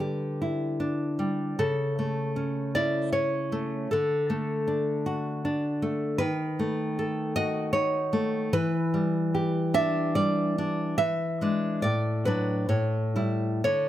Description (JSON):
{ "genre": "romantic piece for solo classical guitar", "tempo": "59-80 BPM", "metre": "3/4", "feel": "rubato", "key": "D major", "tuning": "A4 = 440 Hz", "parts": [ { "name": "nylon-string guitar", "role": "solo", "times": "0.0-13.9 s", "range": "A2 to E5", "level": "-25 LUFS", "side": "equal", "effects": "none" } ], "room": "light reverb", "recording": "close, detailed microphones", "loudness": "-25 LUFS", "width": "side -12 dB against mid", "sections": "0.0-13.9 A section", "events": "none", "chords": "0.0 Em7/D; 1.6 A/C#; 3.9 D; 6.2 B7/D#; 8.5 Em7; 11.0 E7; 11.8 D/A; 12.7 A7" }